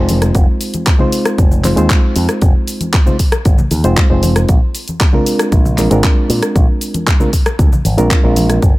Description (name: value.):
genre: nu-disco, nu disco.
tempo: 116 BPM.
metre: 4/4.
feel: straight.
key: Bb mixolydian.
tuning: A4 = 440 Hz.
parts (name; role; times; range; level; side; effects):
reed electric piano; accompaniment; 0.0-8.6 s; Ab3 to C5; -17 LUFS; equal; sidechain pumping, low-pass filter, digital delay.
picked electric bass with an envelope filter; bass; 0.0-8.7 s; F1 to Bb2; -14 LUFS; equal; none.
pop drum kit; drums; 0.1-8.7 s; handclaps, hi-hat, rim click, shaker; -20 LUFS; left 1 dB; none.
congas; percussion; 0.1-8.5 s; none; -22 LUFS; left 1 dB; none.
electronic kick drum; drums; 0.3-8.7 s; none; -12 LUFS; equal; none.
room: little or no reverb.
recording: none.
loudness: -10 LUFS.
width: side -19 dB against mid.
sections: 0.0-8.8 A section.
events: none.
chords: 0.1 Fm7; 4.5 Bb9.